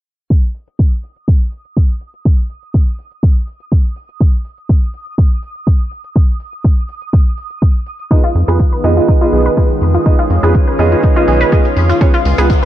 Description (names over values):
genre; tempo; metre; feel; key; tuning
progressive house; 123 BPM; 4/4; straight; unclear; A4 = 437 Hz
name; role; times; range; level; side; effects
electronic hi-hat; drums; 0.3-12.6 s; none; -39 LUFS; left 6 dB; overdrive
electronic kick drum; drums; 0.3-12.6 s; none; -11 LUFS; equal; overdrive
twinkling granular texture; texture; 1.3-12.7 s; Eb6; -31 LUFS; right 4 dB; built-in reverb, sidechain pumping
lush unison pad; sustained chords; 8.1-12.7 s; Db3 to F4; -19 LUFS; equal; chorus, sidechain pumping
analog pluck; arpeggios; 8.1-12.7 s; Db4 to Cb5; -18 LUFS; left 2 dB; chorus, cassette tape, sidechain pumping, ping-pong delay
felt-muted upright piano; stabs; 8.1-12.5 s; Cb4 to Eb5; -16 LUFS; right 4 dB; sidechain pumping, ping-pong delay
tube shaker; percussion; 8.1-12.7 s; none; -41 LUFS; left 3 dB; none
tight sequencer bass; bass; 8.4-12.5 s; Cb2 to F2; -12 LUFS; equal; sidechain pumping
riser; sound effects; 12.2-12.7 s; none; -24 LUFS; left 4 dB; none
room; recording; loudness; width
digital ambience; low-pass filter; -11 LUFS; side -13 dB against mid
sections
0.3-12.7 A section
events
filter sweep 0.3-12.7; riser 12.2-12.7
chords
0.3 N.C.; 8.1 Fm7b5; 12.0 Db7